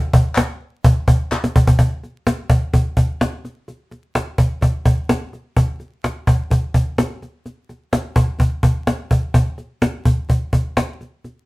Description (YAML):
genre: indie pop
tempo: 127 BPM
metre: 4/4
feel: straight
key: none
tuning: none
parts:
  - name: cajon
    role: drums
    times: 0.1-11.3 s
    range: none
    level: -15 LUFS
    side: equal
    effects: none
  - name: group handclap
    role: percussion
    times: 0.4-1.4 s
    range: none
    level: -24 LUFS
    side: left 3 dB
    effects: none
room: wet studio reverb, RT60 0.5 s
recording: band playing live in one room, vinyl crackle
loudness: -16 LUFS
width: side -21 dB against mid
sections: 0.0-1.8 A section; 1.8-11.5 B section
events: drum fill 1.3-1.8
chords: none